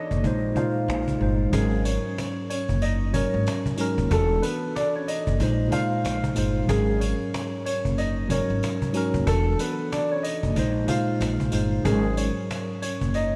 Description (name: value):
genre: hip hop, boom-bap hip-hop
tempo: 93 BPM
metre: 4/4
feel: swing 62% on 16ths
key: unclear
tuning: A4 = 440 Hz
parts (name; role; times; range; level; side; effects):
- dark upright piano; melody; 0.0-13.4 s; G#3 to E#5; -31 LUFS; equal; subtle chorus, high-pass filter, low-pass filter, digital delay
- tine electric piano; accompaniment; 0.0-13.4 s; G#2 to B#4; -29 LUFS; equal; cassette tape, high-pass filter, low-pass filter
- upright bass; bass; 0.1-13.4 s; D#1 to A#1; -28 LUFS; equal; none
- cajon; drums; 0.1-13.2 s; none; -34 LUFS; equal; none
- sleigh bells; percussion; 1.5-13.3 s; none; -41 LUFS; equal; none
room: moderate lush hall reverb, RT60 3.4 s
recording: dreamy mix soaked in reverb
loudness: -25 LUFS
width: mono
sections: 0.0-1.5 A section; 1.5-13.4 A section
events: none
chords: 0.2 A#9sus4; 1.5 G#9sus4; 4.1 E9sus4; 5.4 A#9sus4; 6.7 G#9sus4; 9.3 E9sus4; 10.6 A#9sus4; 11.8 G#9sus4